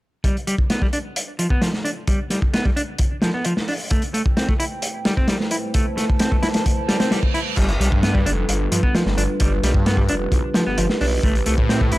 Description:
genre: breakbeat, breaks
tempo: 131 BPM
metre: 4/4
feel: straight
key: unclear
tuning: A4 = 440 Hz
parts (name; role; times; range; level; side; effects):
- clean electric guitar; riff; 0.2-12.0 s; F3 to E4; -24 LUFS; equal; tube saturation, low-pass filter, analog delay
- crunchy breakbeat drum kit; drums; 0.2-12.0 s; crash cymbal, hi-hat, kick drum, snare drum; -20 LUFS; equal; none
- dark analog pad; sustained chords; 3.9-12.0 s; G3 to A5; -27 LUFS; right 1 dB; wide subtle chorus, sidechain pumping
- reverse cymbal; sound effects; 6.8-7.6 s; none; -30 LUFS; right 6 dB; none
- phased detuned saw bass; bass; 7.6-12.0 s; F1 to A2; -21 LUFS; equal; phaser, tube saturation
room: light reverb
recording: dry, gritty hardware recording, transformer saturation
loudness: -18 LUFS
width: side -18 dB against mid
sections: 0.2-7.6 A section; 7.6-12.0 B section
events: reverse cymbal 6.8-7.6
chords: 0.2 G7; 3.9 Am7; 7.6 G7; 11.2 Am7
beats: | 0.24 0.70 1.16 1.62 | 2.08 2.54 2.99 3.45 | 3.91 4.37 4.83 5.28 | 5.74 6.20 6.66 7.12 | 7.57 8.03 8.49 8.95 | 9.40 9.86 10.32 10.78 | 11.24 11.70

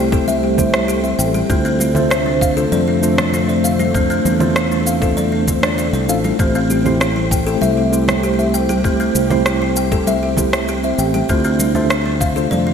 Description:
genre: sunset chillout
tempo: 98 BPM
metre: 4/4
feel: straight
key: D minor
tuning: A4 = 440 Hz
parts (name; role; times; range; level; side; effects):
- mellow tine electric piano; accompaniment; 0.0-12.7 s; A3 to E5; -19 LUFS; moving between left 4 dB and right 4 dB; medium stereo tremolo, auto-pan, ping-pong delay
- soft string machine; sustained chords; 0.0-12.7 s; C3 to G4; -22 LUFS; right 1 dB; ensemble chorus
- buzzing kalimba; arpeggios; 0.0-12.7 s; C4 to G5; -22 LUFS; left 3 dB; ping-pong delay
- fingered electric bass; bass; 0.0-12.7 s; A1 to F2; -20 LUFS; equal; tube saturation
- electronic kick drum; drums; 0.1-12.3 s; none; -20 LUFS; equal; none
- electronic shaker and rim click; drums; 0.1-12.6 s; none; -22 LUFS; equal; overdrive, gated reverb
- congas; percussion; 0.3-12.6 s; none; -26 LUFS; right 3 dB; none
room: moderate lush hall reverb, RT60 2.7 s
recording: bright 1980s-style digital production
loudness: -14 LUFS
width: side -7 dB against mid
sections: 0.0-12.7 A section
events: none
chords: 0.0 Am7; 1.5 Dm7; 6.4 Am7; 11.3 Dm7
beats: 0.27 0.88 | 1.50 2.11 2.72 3.33 | 3.95 4.56 5.17 5.78 | 6.39 7.01 7.62 8.23 | 8.84 9.46 10.07 10.68 | 11.29 11.90 12.52

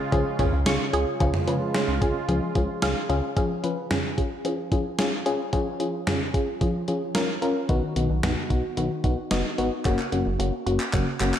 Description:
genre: synth-pop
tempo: 111 BPM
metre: 4/4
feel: straight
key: Db mixolydian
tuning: A4 = 440 Hz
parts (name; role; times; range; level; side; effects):
- sweeping resonant pad; sustained chords; 0.0-3.3 s; Db3 to F4; -32 LUFS; right 3 dB; chorus
- resonant blip pluck; arpeggios; 0.0-11.4 s; Db3 to Db6; -31 LUFS; right 1 dB; phaser, digital delay
- FM electric piano with tremolo; accompaniment; 0.1-11.4 s; Bb3 to Ab5; -27 LUFS; left 3 dB; none
- chorused synth bass; bass; 0.1-3.2, 7.7-11.3 s; Gb1 to Db3; -26 LUFS; equal; none
- gated 80s digital drum machine; drums; 0.1-11.4 s; handclaps, hi-hat, kick drum, snare drum, toms; -27 LUFS; right 1 dB; gated reverb, gated reverb snare
room: moderate lush hall reverb, RT60 1.9 s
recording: dark, warm production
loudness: -22 LUFS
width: side -10 dB against mid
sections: 0.0-1.2 A section; 1.2-3.4 B section; 3.4-11.4 C section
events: FM electric piano fill 0.1-1.2; drum fill 9.9-11.4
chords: 0.0 Db; 7.7 Cb; 9.9 Gb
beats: 0.12 0.66 | 1.21 1.75 2.29 2.83 | 3.37 3.91 4.45 4.99 | 5.53 6.07 6.61 7.15 | 7.69 8.23 8.77 9.31 | 9.85 10.39 10.93

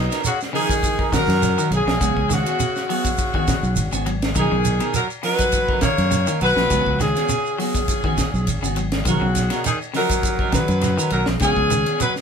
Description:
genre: afrobeat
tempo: 102 BPM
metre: 4/4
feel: swing 53% on 16ths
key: unclear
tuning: A4 = 440 Hz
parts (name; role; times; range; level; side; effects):
- warm horn section; melody; 0.0-12.1 s; D#4 to C#5; -22 LUFS; left 2 dB; none
- raspy tenor saxophone; second line; 0.0-12.1 s; B2 to A#3; -28 LUFS; right 4 dB; none
- fingered electric bass; bass; 0.0-11.8 s; G#1 to F#2; -22 LUFS; equal; none
- clean electric guitar; stabs; 0.1-12.0 s; E#3 to A#4; -28 LUFS; right 5 dB; none
- tight funk drum kit; drums; 0.1-12.2 s; hi-hat, kick drum, ride cymbal, snare drum; -25 LUFS; equal; none
- shekere; percussion; 0.1-12.2 s; none; -26 LUFS; right 4 dB; none
- electric guitar at the edge of break-up; arpeggios; 0.5-12.2 s; B2 to F#3; -28 LUFS; left 4 dB; none
room: moderate studio reverb, RT60 0.5 s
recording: band playing live in one room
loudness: -17 LUFS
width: side -6 dB against mid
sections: 0.0-12.2 A section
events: none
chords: 0.0 Bmaj9; 2.0 C#7sus4; 4.4 Bmaj9#11; 6.7 C#7sus4; 9.1 Bmaj9#11; 11.4 C#7sus4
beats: 0.23 0.82 1.41 | 2.00 2.59 3.18 3.77 | 4.35 4.94 5.53 6.12 | 6.71 7.29 7.88 8.47 | 9.06 9.65 10.23 10.82 | 11.41 12.00

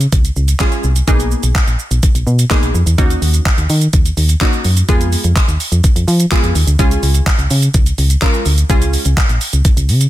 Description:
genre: dance-pop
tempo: 126 BPM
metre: 4/4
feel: straight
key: unclear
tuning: A4 = 436 Hz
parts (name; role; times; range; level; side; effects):
- solid FM bass; bass; 0.0-10.1 s; Bb1 to F3; -13 LUFS; equal; sidechain pumping
- pop drum kit; drums; 0.0-10.1 s; handclaps, hi-hat, kick drum, shaker; -14 LUFS; equal; overdrive
- wavetable chord stab; accompaniment; 0.6-9.2 s; Ab3 to Bb4; -19 LUFS; equal; sidechain pumping
room: little or no reverb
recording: dense, heavily limited modern master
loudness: -11 LUFS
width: side -14 dB against mid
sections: 0.0-10.1 A section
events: none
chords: 0.0 Db; 1.1 Abmadd9; 3.0 Ebm7; 4.9 Fdim; 6.8 Db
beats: 0.12 0.60 | 1.08 1.55 2.03 2.51 | 2.98 3.46 3.94 4.41 | 4.89 5.36 5.84 6.32 | 6.79 7.27 7.74 8.22 | 8.70 9.17 9.65

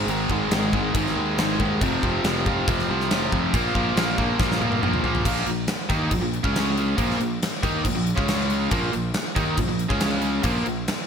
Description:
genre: hard rock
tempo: 139 BPM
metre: 4/4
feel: straight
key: Bb minor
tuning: A4 = 441 Hz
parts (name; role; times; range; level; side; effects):
- cranked stack guitar; riff; 0.0-10.8 s; F2 to Eb4; -23 LUFS; right 1 dB; overdrive
- fuzz fingered electric bass; bass; 0.0-10.9 s; F1 to Eb2; -28 LUFS; equal; overdrive
- gated 80s drum kit; drums; 0.1-11.0 s; crash cymbal, kick drum, snare drum, toms; -25 LUFS; equal; gated reverb
room: light reverb, small room ambience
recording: bright 1980s-style digital production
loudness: -20 LUFS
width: side -7 dB against mid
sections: 0.0-5.3 A section; 5.3-11.1 B section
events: drum fill 4.4-5.3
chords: 0.0 Ab5; 1.8 F5; 3.5 Bb5; 6.4 Db5; 7.0 Bb5; 8.2 Db5; 8.7 Bb5; 9.9 Db5; 10.4 Bb5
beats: | 0.08 0.51 0.94 1.38 | 1.81 2.24 2.67 3.10 | 3.53 3.96 4.39 4.83 | 5.26 5.69 6.12 6.55 | 6.99 7.42 7.85 8.28 | 8.71 9.15 9.58 10.01 | 10.45 10.88

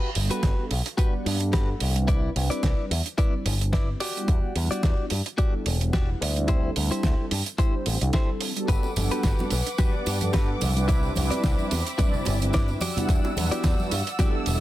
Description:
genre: nu-disco, nu disco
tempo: 109 BPM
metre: 4/4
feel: swing 55% on 16ths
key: G major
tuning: A4 = 439 Hz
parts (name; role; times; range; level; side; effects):
- direct-recorded clean electric guitar; riff; 0.0-14.5 s; E4 to D5; -32 LUFS; left 3 dB; wide subtle chorus, vintage 12-bit sampler grit, slapback echo
- mellow synth brass; accompaniment; 0.1-14.6 s; G3 to F#5; -31 LUFS; right 1 dB; chorus, sidechain pumping, slapback echo
- picked electric bass with an envelope filter; bass; 0.2-14.6 s; E1 to G2; -26 LUFS; equal; none
- damped 70s drum kit; drums; 0.2-14.6 s; hi-hat, snare drum; -30 LUFS; right 3 dB; none
- electronic kick drum; drums; 0.4-14.3 s; none; -24 LUFS; equal; none
- muted studio violin section; sustained chords; 8.7-14.6 s; C4 to E6; -34 LUFS; right 1 dB; sidechain pumping
- tambourine, bongos and congas; percussion; 8.7-14.6 s; none; -33 LUFS; right 2 dB; none
room: small room ambience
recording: dense, heavily limited modern master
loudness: -22 LUFS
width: side -15 dB against mid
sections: 0.0-14.6 A section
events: filter sweep on analog polysynth 0.0-14.6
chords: 0.0 Gmaj7; 2.1 Cmaj9; 4.0 Em9; 6.5 D9sus4; 8.7 Gmaj7; 10.9 Cmaj9; 12.8 Em9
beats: 0.43 0.98 1.53 | 2.08 2.63 3.18 3.73 | 4.29 4.84 5.39 5.94 | 6.49 7.04 7.59 8.14 | 8.69 9.24 9.79 10.34 | 10.89 11.44 11.99 12.54 | 13.09 13.64 14.19

